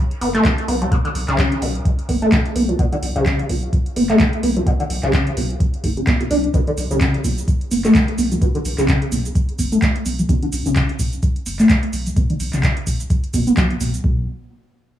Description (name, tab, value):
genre	acid house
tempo	128 BPM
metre	4/4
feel	swing 57% on 16ths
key	B minor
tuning	A4 = 442 Hz
part	booming analog drum machine	drums	0.1-14.0 s	handclaps, hi-hat, shaker	-26 LUFS	right 1 dB	overdrive
part	deep acid bass	riff	0.2-14.3 s	A2 to D4	-18 LUFS	equal	overdrive, lush chorus, sidechain pumping, diffuse ambient delay
part	round analog bass	bass	0.2-14.3 s	F#1 to B1	-25 LUFS	equal	tube saturation, sidechain pumping
part	electronic kick drum	drums	0.4-14.1 s	none	-19 LUFS	equal	overdrive
room	moderate plate reverb, RT60 1.1 s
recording	dreamy mix soaked in reverb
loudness	-16 LUFS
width	side -11 dB against mid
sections	0.0-14.0 A section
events	filter sweep on acid bass 0.0-14.0; filter sweep on analog synth bass 0.0-14.0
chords	0.0 B5; 14.0 N.C.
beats	0.45 | 0.92 1.39 1.85 2.32 | 2.79 3.26 3.73 4.20 | 4.67 5.13 5.60 6.07 | 6.54 7.01 7.48 7.95 | 8.42 8.88 9.35 9.82 | 10.29 10.76 11.23 11.70 | 12.17 12.63 13.10 13.57 | 14.04